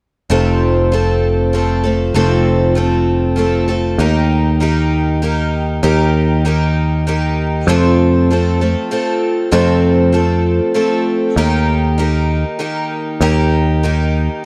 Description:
rock; 98 BPM; 3/4; straight; F mixolydian; A4 = 440 Hz
picked twelve-string acoustic guitar; accompaniment; 0.3-14.5 s; F2 to A4; -18 LUFS; equal
picked electric bass; bass; 0.3-14.3 s; F1 to F2; -17 LUFS; equal
little or no reverb; dry, close 1970s-style studio recording; -15 LUFS; mono
0.3-7.7 A section; 7.7-14.5 B section
0.3 F; 4.0 Eb; 7.7 F; 11.4 Eb
| 0.31 0.92 1.54 | 2.15 2.77 3.38 | 4.00 4.61 5.23 | 5.84 6.46 7.07 | 7.69 8.30 8.91 | 9.53 10.14 10.76 | 11.37 11.99 12.60 | 13.21 13.83 14.44

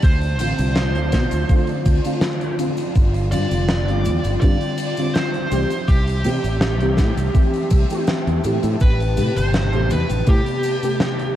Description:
vaporwave; 82 BPM; 4/4; straight; A4 = 440 Hz
dark smooth lead guitar; melody; 0.0-11.4 s; G4 to D5; -27 LUFS; right 2 dB; overdrive, tape echo
soft string machine; sustained chords; 0.0-11.4 s; F4 to C6; -30 LUFS; equal; ensemble chorus, vintage 12-bit sampler grit
fretless electric bass; bass; 0.0-10.4 s; F1 to C3; -20 LUFS; equal
electronic kick drum; drums; 0.0-10.4 s; -16 LUFS; equal
huge arena drum kit; drums; 0.0-11.3 s; cabasa, hi-hat, snare drum; -26 LUFS; equal
mellow FM electric piano; accompaniment; 0.4-11.3 s; B2 to G4; -24 LUFS; left 1 dB; ensemble chorus
light reverb, studio ambience; cassette tape; -16 LUFS; side -12 dB against mid
0.0-11.4 A section
0.0 Dm7; 3.0 G7sus4; 5.5 C6; 8.8 Am9
| 0.03 0.76 1.49 2.22 | 2.96 3.69 4.42 5.15 | 5.88 6.62 7.35 8.08 | 8.81 9.54 10.27 11.01

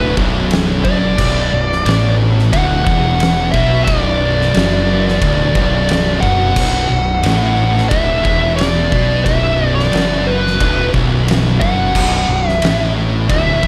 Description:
stoner and doom metal; 89 BPM; 4/4; straight; B minor; A4 = 440 Hz
fuzz lead guitar; melody; 0.0-13.7 s; B4 to F#5; -20 LUFS; equal; wah, distortion, slapback echo
swarming drone; sustained chords; 0.2-13.7 s; B3 to F#4; -32 LUFS; equal
heavy high-gain guitar; riff; 0.0-13.7 s; B1 to B2; -26 LUFS; equal; distortion
thick fuzz guitar; riff; 0.0-13.7 s; B1 to B2; -23 LUFS; equal
thick fuzz guitar; riff; 0.0-13.7 s; B1 to B2; -22 LUFS; equal; distortion
fuzz fingered electric bass; bass; 0.0-13.7 s; B0 to B1; -22 LUFS; equal; overdrive
oversized low-tuned drum kit; drums; 0.2-13.7 s; crash cymbal, kick drum, ride cymbal, snare drum; -21 LUFS; equal
small room ambience; -14 LUFS; mono
0.0-13.7 A section
0.0 Bm
0.51 | 1.18 1.85 2.52 3.20 | 3.87 4.54 5.22 5.89 | 6.56 7.24 7.91 8.58 | 9.26 9.93 10.60 11.27 | 11.95 12.62 13.29

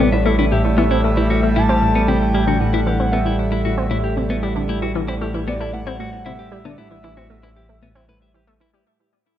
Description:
ambient, sequencer-driven space music; 115 BPM; 4/4; straight; A4 = 440 Hz
breathy flute-like synth lead; melody; 0.0-8.3 s; D5 to A5; -26 LUFS; left 1 dB; chorus, cassette tape, tape echo
sweeping resonant pad; sustained chords; 0.0-8.9 s; A2 to A3; -21 LUFS; right 2 dB; chorus
clean electric guitar; arpeggios; 0.0-8.8 s; B3 to E5; -26 LUFS; left 4 dB; auto-pan, tape echo
analog pluck; riff; 0.0-8.8 s; A2 to C4; -24 LUFS; left 2 dB; chorus, tape echo
warm sub bass; bass; 0.0-8.8 s; A1; -22 LUFS; equal
moderate spring reverb, RT60 2.3 s; echo-heavy mix, cassette tape; -16 LUFS; side -11 dB against mid
0.0-8.9 A section
fade-out 0.5-8.9
0.0 Am7
0.00 | 0.52 1.04 1.56 2.09 | 2.61 3.13 3.65 4.17 | 4.69 5.22 5.74 6.26 | 6.78 7.30 7.83 8.35

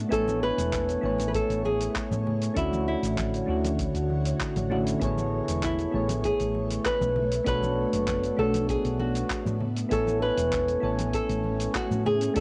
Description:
sunset chillout; 98 BPM; 4/4; straight; A major; A4 = 438 Hz
ethereal airy pad; sustained chords; 0.0-12.4 s; D3 to C#5; -36 LUFS; equal; ensemble chorus, built-in reverb, cassette tape
woody fretless electric bass; bass; 0.0-12.4 s; E1 to A2; -33 LUFS; equal
nylon-string guitar; melody; 0.1-12.4 s; E4 to B4; -30 LUFS; equal; cassette tape, analog delay
soft electric-piano-like synth keys; accompaniment; 0.1-12.4 s; A3 to G#5; -33 LUFS; equal; chorus, cassette tape, tape echo
dusty soul sampler-style drum kit; drums; 0.1-12.4 s; cabasa, handclaps, hi-hat; -38 LUFS; equal
electronic kick drum; drums; 0.1-12.4 s; -38 LUFS; equal
congas; percussion; 0.3-12.2 s; -41 LUFS; equal
moderate booth ambience, RT60 0.2 s; home recording on cassette, nothing above 10.7 kHz; -27 LUFS; mono
0.0-12.4 A section
0.0 Amaj7; 2.6 Dmaj7; 5.0 Amaj7; 7.2 Bm7; 9.6 Amaj7
| 0.12 0.73 1.34 1.95 | 2.56 3.18 3.79 4.40 | 5.01 5.63 6.24 6.85 | 7.46 8.08 8.69 9.30 | 9.91 10.53 11.14 11.75 | 12.36

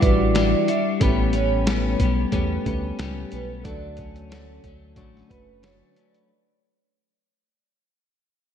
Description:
indie pop, bedroom pop; 91 BPM; 4/4; swing 55% on 16ths; A4 = 439 Hz
vibraphone with medium hard mallets; second line; 0.0-6.1 s; B4 to E5; -29 LUFS; right 7 dB; analog chorus, ping-pong delay
soft electric-piano-like synth keys; accompaniment; 0.0-6.3 s; G3 to D5; -26 LUFS; right 3 dB; chorus
twelve-string electric guitar; accompaniment; 0.0-6.3 s; A2 to F#4; -26 LUFS; left 8 dB; lush chorus, vibrato effect
round analog bass; bass; 0.0-5.8 s; F#1 to E2; -26 LUFS; equal
lo-fi sampler-style drum kit; drums; 0.0-6.3 s; hi-hat, kick drum, snare drum; -24 LUFS; equal
moderate lush hall reverb, RT60 1.8 s, digital ambience; dreamy mix soaked in reverb; -19 LUFS; side -8 dB against mid
0.0-6.3 A section
fade-out 0.0-6.3
0.0 Em9; 1.0 A9; 3.7 Dmaj7
0.35 | 1.01 1.67 2.33 2.99 | 3.65 4.31 4.97 5.63

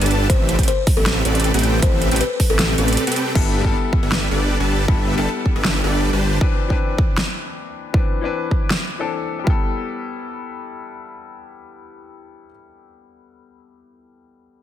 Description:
future bass; 157 BPM; 4/4; half-time; G major; A4 = 441 Hz
buzzing kalimba; melody; 0.0-3.3 s; A4 to C5; -25 LUFS; left 4 dB; sidechain pumping, digital delay
dense compressed supersaw; riff; 0.0-6.4 s; C4 to A5; -22 LUFS; right 1 dB; sidechain pumping, ping-pong delay
wide detuned saw bass; bass; 0.0-6.4 s; G1 to A1; -20 LUFS; equal; chorus, sidechain pumping
big-room dance drum kit; drums; 0.0-8.8 s; crash cymbal, hi-hat, snare drum; -23 LUFS; right 1 dB; overdrive, studio reverb
electronic kick drum; drums; 0.3-9.5 s; -18 LUFS; equal; overdrive, studio reverb
clear grand piano; accompaniment; 3.3-14.6 s; E3 to B4; -27 LUFS; left 6 dB; sidechain pumping, ping-pong delay
light reverb, digital ambience; dense, heavily limited modern master; -16 LUFS; side -11 dB against mid
0.0-3.4 A section; 3.4-9.5 B section; 9.5-12.5 C section
drop 0.0-3.4; break 3.0-3.4
0.3 Am9; 3.4 G69
| 0.30 0.68 1.06 1.44 | 1.82 2.21 2.59 2.97 | 3.35 3.74 4.12 4.50 | 4.88 5.26 5.65 6.03 | 6.41 6.79 7.18 7.56 | 7.94 8.32 8.70 9.09 | 9.47 9.85 10.23 10.62 | 11.00 11.38 11.76 12.14

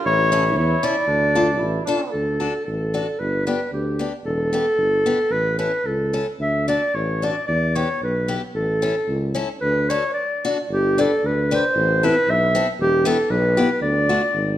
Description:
alpine folk, alpine dance band; 113 BPM; 2/4; rubato; D major, G major from 10.7 s; A4 = 436 Hz
mellow trumpet; second line; 0.0-2.1 s; D4 to E4; -27 LUFS; right 5 dB
warm clarinet; melody; 0.1-14.6 s; G4 to E5; -20 LUFS; equal
warm tuba; bass; 0.1-14.6 s; E1 to E2; -24 LUFS; equal
picked steel-string acoustic guitar; accompaniment; 0.3-14.2 s; A3 to B4; -25 LUFS; left 3 dB
moderate recital hall reverb, RT60 1.5 s; -18 LUFS; side -12 dB against mid
0.0-2.1 A section; 2.1-10.7 B section; 10.7-14.6 C section
break 10.2-10.7
0.1 A; 1.1 Dm; 2.1 D; 3.2 G; 4.3 Em; 5.3 A; 6.4 D; 7.5 Em; 8.6 A; 9.6 D; 10.7 G; 11.8 Amadd9; 12.8 Em; 13.8 D
| 0.05 0.56 | 1.08 1.60 | 2.14 2.67 | 3.21 3.73 | 4.26 4.79 | 5.32 5.86 | 6.40 6.95 | 7.49 8.02 | 8.55 9.08 | 9.62 10.16 | 10.71 11.24 | 11.77 12.28 | 12.79 13.30 | 13.82 14.35

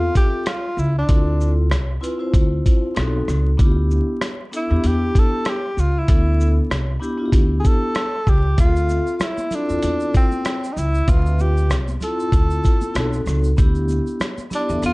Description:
hip hop, jazz-hop; 96 BPM; 4/4; swing 58% on 16ths; D dorian; A4 = 440 Hz
mellow tenor saxophone; melody; 0.0-14.9 s; C4 to A4; -24 LUFS; equal; slapback echo, plate reverb
vibraphone with soft mallets; accompaniment; 0.0-14.9 s; B3 to E5; -25 LUFS; left 1 dB; plate reverb
upright bass; bass; 0.0-14.9 s; B1 to E2; -19 LUFS; equal
dusty soul sampler-style drum kit; drums; 0.2-14.9 s; hi-hat, kick drum, rim click, shaker; -18 LUFS; equal
tube shaker and congas; percussion; 8.6-14.9 s; -35 LUFS; right 2 dB
light reverb; dark, warm production, vinyl crackle, nothing above 10.6 kHz; -16 LUFS; side -23 dB against mid
0.0-14.9 A section
0.0 Dm9; 3.0 B7b9; 3.6 Em7; 8.6 Dm9; 13.0 B7b9; 13.6 Em7/D
0.46 | 1.08 1.71 2.33 2.96 | 3.58 4.21 4.83 5.46 | 6.08 6.71 7.33 7.96 | 8.58 9.21 9.83 10.46 | 11.08 11.71 12.33 12.96 | 13.58 14.21 14.83

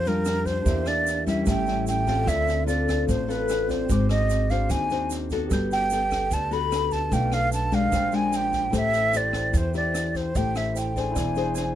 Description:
bossa nova; 149 BPM; 4/4; straight; A minor; A4 = 438 Hz
breathy concert flute; melody; 0.0-11.8 s; Bb4 to B5; -26 LUFS; right 1 dB
barky tine electric piano; accompaniment; 0.0-11.8 s; C4 to G6; -33 LUFS; right 6 dB
nylon-string guitar; accompaniment; 0.0-11.8 s; A2 to B#4; -28 LUFS; left 5 dB
upright bass; bass; 0.0-11.8 s; E1 to F2; -28 LUFS; right 1 dB
compact cocktail drum kit; drums; 0.1-11.6 s; kick drum, rim click, snare drum; -32 LUFS; right 1 dB
egg shaker; percussion; 0.1-11.8 s; -41 LUFS; right 11 dB
little or no reverb; close, detailed microphones; -22 LUFS; side -11 dB against mid
0.0-11.8 A section
tine electric piano fill 11.4-11.8
0.0 Bb6; 0.7 Em7b5; 1.5 A7; 2.3 Dm7; 3.9 G#7#11; 5.5 Gmaj9; 7.1 Bm7b5; 7.9 Bb13; 8.7 Am7; 11.2 E7b13
0.26 | 0.66 1.07 1.47 1.87 | 2.28 2.68 3.08 3.49 | 3.89 4.29 4.70 5.10 | 5.50 5.91 6.31 6.72 | 7.12 7.52 7.93 8.33 | 8.73 9.14 9.54 9.95 | 10.35 10.75 11.16 11.56

